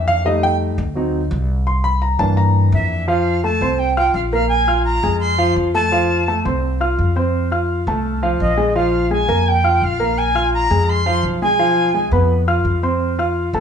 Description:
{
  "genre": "Afro-Cuban jazz",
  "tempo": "169 BPM",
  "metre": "4/4",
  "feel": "straight",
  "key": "unclear",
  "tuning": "A4 = 437 Hz",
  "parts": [
    { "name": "warm concert grand piano", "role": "accompaniment", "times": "0.0-13.6 s", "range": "E3 to F6", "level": "-18 LUFS", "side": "equal", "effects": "none" },
    { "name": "upright bass", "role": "bass", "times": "0.0-13.6 s", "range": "Bb1 to G2", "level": "-20 LUFS", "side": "left 1 dB", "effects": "none" },
    { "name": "breathy bright jazz flute", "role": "melody", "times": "2.7-12.1 s", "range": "Eb5 to C6", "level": "-19 LUFS", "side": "right 1 dB", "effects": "none" }
  ],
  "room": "moderate large studio reverb, RT60 1.1 s",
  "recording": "band playing live in one room, nothing above 10.8 kHz",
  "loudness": "-15 LUFS",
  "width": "side -7 dB against mid",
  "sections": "0.0-3.1 A section; 3.1-13.6 B section",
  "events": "grand piano solo 0.0-3.1",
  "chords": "0.3 F9; 1.0 D7b9; 1.7 C9; 3.1 F; 4.5 Bbsus2; 5.9 F; 8.8 Bb5; 11.6 Fdim; 13.0 F"
}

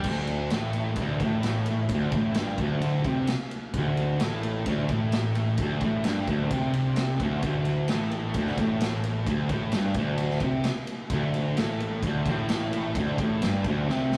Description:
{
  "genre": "garage rock duo or trio",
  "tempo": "130 BPM",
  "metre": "4/4",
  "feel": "straight",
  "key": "unclear",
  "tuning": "A4 = 440 Hz",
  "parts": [
    { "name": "fuzz guitar", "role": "riff", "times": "0.0-14.2 s", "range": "D2 to C3", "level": "-28 LUFS", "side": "equal", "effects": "distortion" },
    { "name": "fuzz picked electric bass", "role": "bass", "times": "0.0-14.2 s", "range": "D1 to C2", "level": "-40 LUFS", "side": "equal", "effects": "none" },
    { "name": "raw garage drum kit", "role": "drums", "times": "0.0-14.2 s", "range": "crash cymbal, kick drum, ride cymbal, snare drum", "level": "-34 LUFS", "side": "equal", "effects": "none" }
  ],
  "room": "wet stone room reverb, RT60 1.2 s",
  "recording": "rough rehearsal-room recording",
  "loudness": "-27 LUFS",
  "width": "mono",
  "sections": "0.1-14.2 A section",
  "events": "drum fill 13.9",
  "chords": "0.1 D5"
}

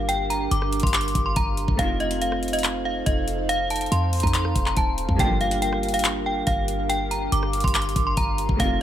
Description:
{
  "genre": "hip hop, trap",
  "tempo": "141 BPM",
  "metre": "4/4",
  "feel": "half-time",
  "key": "G minor",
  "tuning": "A4 = 440 Hz",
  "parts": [
    { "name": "metallic FM bell", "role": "melody", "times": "0.0-8.8 s", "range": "Eb5 to D6", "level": "-25 LUFS", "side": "equal", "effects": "chorus, low-pass filter, digital delay" },
    { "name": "felt-muted upright piano", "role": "accompaniment", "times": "0.0-8.8 s", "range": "G3 to F4", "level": "-32 LUFS", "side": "right 2 dB", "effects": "low-pass filter" },
    { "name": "airy breathy pad", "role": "sustained chords", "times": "0.0-8.8 s", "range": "D4 to F5", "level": "-32 LUFS", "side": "right 2 dB", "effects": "chorus" },
    { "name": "clean 808-style bass", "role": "bass", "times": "0.0-8.8 s", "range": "Eb1 to F2", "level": "-27 LUFS", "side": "equal", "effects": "none" },
    { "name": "trap drum kit", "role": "drums", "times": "0.1-8.7 s", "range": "handclaps, hi-hat, kick drum, rim click", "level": "-25 LUFS", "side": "equal", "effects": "none" },
    { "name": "warm studio string section", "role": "stabs", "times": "1.8-2.1, 5.2-5.5, 8.6-8.8 s", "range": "A2 to F3", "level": "-32 LUFS", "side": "left 6 dB", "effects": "digital delay" }
  ],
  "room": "digital ambience",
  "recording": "none",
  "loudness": "-20 LUFS",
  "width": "side -11 dB against mid",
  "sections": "0.0-8.8 A section",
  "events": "none",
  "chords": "0.0 Gm7; 1.8 F7; 5.2 Gm7"
}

